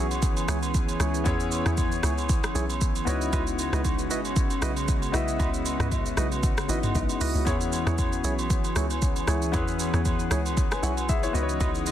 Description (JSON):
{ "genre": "amapiano", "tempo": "116 BPM", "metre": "4/4", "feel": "swing 55% on 16ths", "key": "E major", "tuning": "A4 = 440 Hz", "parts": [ { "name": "clear grand piano", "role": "accompaniment", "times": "0.0-11.9 s", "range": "B3 to G#5", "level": "-32 LUFS", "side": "left 7 dB", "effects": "none" }, { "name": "lush unison pad", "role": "sustained chords", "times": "0.0-11.9 s", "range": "C#3 to D#5", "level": "-32 LUFS", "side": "equal", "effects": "chorus" }, { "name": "percussive organ stab", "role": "stabs", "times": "0.0-11.7 s", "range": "E4 to D#5", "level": "-34 LUFS", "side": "right 3 dB", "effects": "chorus, ping-pong delay" }, { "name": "tight log drum bass", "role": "bass", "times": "0.0-11.9 s", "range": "G#1 to E2", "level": "-29 LUFS", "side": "equal", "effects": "none" }, { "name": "afro-pop drum kit", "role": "drums", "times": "0.1-11.9 s", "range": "hi-hat, kick drum, rim click, shaker, toms", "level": "-27 LUFS", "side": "equal", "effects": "soft clipping on snare" }, { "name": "agogo bells and woodblock", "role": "percussion", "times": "0.1-11.9 s", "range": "none", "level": "-36 LUFS", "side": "right 5 dB", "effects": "none" } ], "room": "digital ambience", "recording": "dense, heavily limited modern master", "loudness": "-23 LUFS", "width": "side -11 dB against mid", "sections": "0.0-11.9 A section", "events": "none", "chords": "0.0 E6; 3.1 C#m11; 7.5 E6; 11.3 C#m11" }